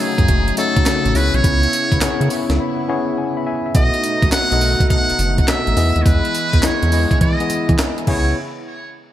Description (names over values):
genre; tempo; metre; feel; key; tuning
R&B, new jack swing; 104 BPM; 4/4; swing 66% on 16ths; unclear; A4 = 439 Hz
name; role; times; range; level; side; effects
trumpet with metal mute; melody; 0.0-8.3 s; G#4 to F#5; -21 LUFS; right 1 dB; digital delay
tine electric piano; accompaniment; 0.0-8.4 s; A3 to C#6; -22 LUFS; left 4 dB; none
lush unison pad; sustained chords; 0.0-8.3 s; B2 to E4; -26 LUFS; equal; chorus, phaser
round analog bass; bass; 0.2-8.3 s; F#1 to E3; -18 LUFS; right 1 dB; none
breakbeat sampler-style drum kit; drums; 0.2-8.3 s; crash cymbal, handclaps, hi-hat, kick drum, snare drum, tambourine; -18 LUFS; right 1 dB; gated reverb
room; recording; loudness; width
light reverb; bright 1980s-style digital production; -14 LUFS; side -12 dB against mid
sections
0.0-3.7 A section; 3.7-8.4 B section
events
tine electric piano fill 2.0-3.7; break 2.6-3.7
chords
0.0 D#m7b5; 1.1 C#m7; 3.7 B7; 5.8 Emaj7; 8.1 C#m7; 8.4 N.C.